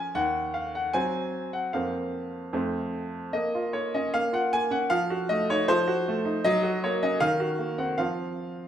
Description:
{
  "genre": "classical-period piano sonatina",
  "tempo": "77 BPM",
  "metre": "2/4",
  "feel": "straight",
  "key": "Bb minor",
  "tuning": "A4 = 442 Hz",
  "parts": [
    { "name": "bright baby grand piano", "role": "solo", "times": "0.0-8.7 s", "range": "Eb2 to Ab5", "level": "-25 LUFS", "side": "equal", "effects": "none" }
  ],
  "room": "moderate recital hall reverb, RT60 1.3 s",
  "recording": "none",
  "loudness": "-25 LUFS",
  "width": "side -10 dB against mid",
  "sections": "0.0-3.3 A section; 3.3-8.7 B section",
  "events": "none",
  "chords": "0.1 Cdim/Eb; 1.7 Fsus4; 2.5 F; 3.3 Bbm; 4.9 F7b9; 6.4 Gb; 7.2 Cm7b5/Eb; 8.0 F5",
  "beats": "| 0.15 0.92 | 1.72 2.53 | 3.33 4.12 | 4.89 5.67 | 6.44 7.21 | 7.99"
}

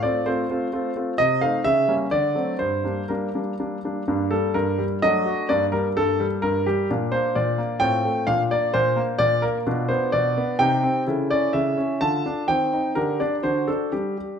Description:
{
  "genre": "classical-period piano sonatina",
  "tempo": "128 BPM",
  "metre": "3/4",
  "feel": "rubato",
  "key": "G minor",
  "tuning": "A4 = 440 Hz",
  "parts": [
    { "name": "clear grand piano", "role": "solo", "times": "0.0-14.4 s", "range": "G2 to A5", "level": "-20 LUFS", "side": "equal", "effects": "none" }
  ],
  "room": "wet recital hall reverb, RT60 1.5 s",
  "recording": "minimal, uncompressed stereo recording",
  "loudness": "-20 LUFS",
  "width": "side -7 dB against mid",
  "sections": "0.0-4.1 A section; 4.1-14.4 B section",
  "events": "none",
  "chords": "0.0 F/A; 1.2 Adim/C; 1.6 C#dim7; 2.1 D7; 2.6 Gm; 5.0 D/F#; 5.5 Gm; 6.9 Bb; 7.8 F/A; 8.3 Bb; 9.7 Bdim; 10.6 Cm; 11.1 A/C#; 12.0 Dm; 12.5 Cm/Eb; 13.0 Gm/D; 13.4 D7",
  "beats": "0.26 0.72 | 1.18 1.65 2.12 | 2.60 3.10 3.59 | 4.08 4.55 5.02 | 5.49 5.96 6.43 | 6.90 7.36 7.82 | 8.28 8.74 9.20 | 9.66 10.13 10.59 | 11.06 11.54 12.01 | 12.48 12.96 13.44 | 13.93"
}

